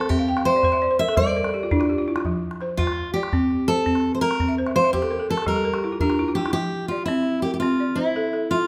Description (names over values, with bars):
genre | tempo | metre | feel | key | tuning
west african traditional, West African string and xylophone music | 112 BPM (dotted quarters) | 12/8 | straight | F major | A4 = 440 Hz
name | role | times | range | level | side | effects
fingerpicked steel-string acoustic guitar | melody | 0.0-8.7 s | E4 to E5 | -25 LUFS | equal | none
balafon | arpeggios | 0.0-8.7 s | F3 to G5 | -26 LUFS | equal | none
calabash | percussion | 0.0-6.5 s | none | -30 LUFS | equal | none
room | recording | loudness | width
wet recital hall reverb, RT60 1.4 s | none | -22 LUFS | mono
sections
0.0-6.5 A section; 6.5-8.7 B section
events
balafon fill 0.1-2.2, 4.5-6.5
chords
0.1 C5; 1.2 G5; 2.2 F; 4.4 C5; 5.5 Gm; 6.5 F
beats
| 0.10 0.64 1.17 1.71 | 2.24 2.78 3.32 3.85 | 4.39 4.93 5.46 6.00 | 6.54 7.07 7.61 8.15